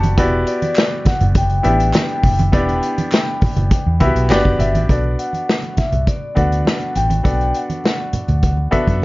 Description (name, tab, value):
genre	lush 1970s-style soul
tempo	102 BPM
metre	4/4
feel	straight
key	unclear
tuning	A4 = 441 Hz
part	clear baby grand piano	accompaniment	0.0-9.0 s	B3 to B5	-21 LUFS	left 1 dB	none
part	vintage muted fingered electric bass	bass	0.0-9.0 s	E1 to F#2	-17 LUFS	equal	none
part	vintage drum kit	drums	0.0-9.0 s	hi-hat, kick drum, snare drum	-18 LUFS	equal	none
part	congas	percussion	0.0-9.0 s	none	-24 LUFS	right 2 dB	none
part	vibraphone with medium mallets	melody	0.5-8.7 s	D5 to G5	-23 LUFS	left 2 dB	none
part	group handclap	percussion	0.8-4.4 s	none	-29 LUFS	right 2 dB	none
room	light reverb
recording	dark, warm production, nothing above 7.5 kHz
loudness	-14 LUFS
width	side -20 dB against mid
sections	0.0-4.9 A section; 4.9-9.0 B section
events	grand piano fill 0.0, 3.7-4.9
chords	0.2 Em9; 4.3 Gmaj7; 4.9 Bm7